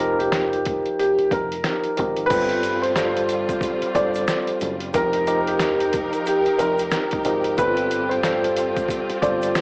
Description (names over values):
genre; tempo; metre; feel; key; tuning
hip hop, boom-bap hip-hop; 91 BPM; 4/4; swing 60% on 16ths; unclear; A4 = 440 Hz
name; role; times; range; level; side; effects
warm upright piano; melody; 0.0-9.6 s; G4 to D5; -23 LUFS; equal; high-pass filter, low-pass filter, plate reverb
tine electric piano; accompaniment; 0.0-9.6 s; F3 to C5; -23 LUFS; equal; medium stereo tremolo, cassette tape, high-pass filter, low-pass filter, plate reverb
deep dub picked electric bass; bass; 0.0-9.5 s; F1 to Ab1; -31 LUFS; equal; none
trip hop sampler-style drum kit; drums; 0.2-9.6 s; crash cymbal, hi-hat, kick drum, rim click, snare drum; -27 LUFS; equal; cassette tape
warm studio string section; sustained chords; 2.3-9.6 s; F3 to Bb4; -28 LUFS; equal; high-pass filter, low-pass filter, cassette tape, plate reverb
egg shaker; percussion; 2.3-9.6 s; none; -48 LUFS; equal; none
room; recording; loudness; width
moderate booth ambience, RT60 0.2 s; home recording on cassette, vinyl crackle, small speaker sound; -19 LUFS; side -39 dB against mid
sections
0.0-2.3 A section; 2.3-9.6 B section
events
none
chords
0.0 F9sus4; 2.3 G9sus4; 4.9 F9sus4; 7.6 G9sus4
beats
0.33 0.99 1.65 | 2.31 2.96 3.62 4.28 | 4.94 5.60 6.26 6.92 | 7.58 8.24 8.90 9.56